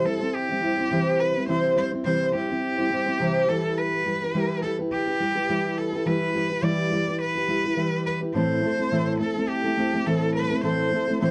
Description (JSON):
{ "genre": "pop", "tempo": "105 BPM", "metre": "4/4", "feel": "swing 55% on 16ths", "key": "unclear", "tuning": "A4 = 440 Hz", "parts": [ { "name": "rich cello", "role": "melody", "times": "0.0-11.3 s", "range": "G4 to D5", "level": "-29 LUFS", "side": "equal", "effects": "none" }, { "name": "fingerpicked steel-string acoustic guitar", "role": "accompaniment", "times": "0.0-11.3 s", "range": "A2 to C5", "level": "-26 LUFS", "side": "equal", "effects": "none" } ], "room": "moderate small room reverb, RT60 0.5 s", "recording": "dark, warm production", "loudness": "-24 LUFS", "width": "mono", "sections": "0.0-11.3 A section", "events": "none", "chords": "0.0 C; 3.5 Em; 8.4 Am" }